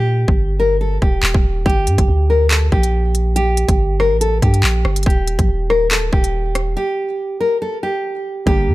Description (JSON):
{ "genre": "hip hop, drill", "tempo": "141 BPM", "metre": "4/4", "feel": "half-time", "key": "unclear", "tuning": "A4 = 440 Hz", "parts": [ { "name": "nylon-string guitar", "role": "melody", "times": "0.0-8.7 s", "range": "G4 to Bb4", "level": "-19 LUFS", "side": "left 1 dB", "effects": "digital delay" }, { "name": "long sustained 808-style bass", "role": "bass", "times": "0.0-8.7 s", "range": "Eb1 to Bb2", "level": "-17 LUFS", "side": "equal", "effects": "none" }, { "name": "drill drum kit", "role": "drums", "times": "0.3-8.6 s", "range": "handclaps, hi-hat, kick drum, rim click", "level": "-16 LUFS", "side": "equal", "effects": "none" }, { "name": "dark baby grand piano", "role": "accompaniment", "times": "8.5-8.7 s", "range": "D3 to G4", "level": "-20 LUFS", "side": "right 2 dB", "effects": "none" } ], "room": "little or no reverb", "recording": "none", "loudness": "-14 LUFS", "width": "side -18 dB against mid", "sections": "0.0-8.7 A section", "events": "break 0.0-1.7, 6.8-8.5; hi-hats muted 8.5", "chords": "0.0 Eb; 1.7 Gm; 5.1 Eb" }